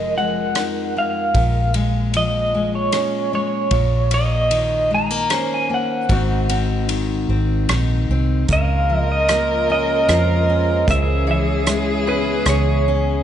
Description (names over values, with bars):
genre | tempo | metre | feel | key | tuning
acoustic folk-pop ballad | 76 BPM | 3/4 | straight | Db major | A4 = 440 Hz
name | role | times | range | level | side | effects
electric guitar through a small old amp | melody | 0.0-13.0 s | Cb5 to Bb5 | -20 LUFS | right 1 dB | tremolo, slapback echo
fingerpicked steel-string acoustic guitar | accompaniment | 0.0-13.2 s | F2 to Gb4 | -24 LUFS | left 3 dB | none
vibraphone with hard mallets | arpeggios | 0.0-1.7, 5.3-13.2 s | Cb4 to Db5 | -28 LUFS | right 4 dB | none
vintage muted fingered electric bass | bass | 0.0-13.2 s | F1 to F2 | -20 LUFS | equal | none
loose indie drum kit | drums | 0.6-12.6 s | hi-hat, kick drum, ride cymbal, rim click | -25 LUFS | equal | none
warm viola | second line | 8.5-13.2 s | Ab4 to Bb4 | -25 LUFS | left 4 dB | none
warm studio string section | sustained chords | 8.5-13.2 s | Db3 to F4 | -28 LUFS | equal | none
room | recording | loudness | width
moderate concert hall reverb, RT60 2.3 s | nothing above 10.9 kHz | -16 LUFS | side -10 dB against mid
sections
0.0-8.5 A section; 8.5-13.2 B section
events
none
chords
0.0 Fm7; 1.3 Bbm7; 3.7 Eb5/Bb; 6.1 Ab7; 8.5 Db6; 10.9 Dbm7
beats
0.55 | 1.35 2.14 2.93 | 3.72 4.51 5.30 | 6.09 6.89 7.69 | 8.49 9.28 10.08 | 10.87 11.66 12.46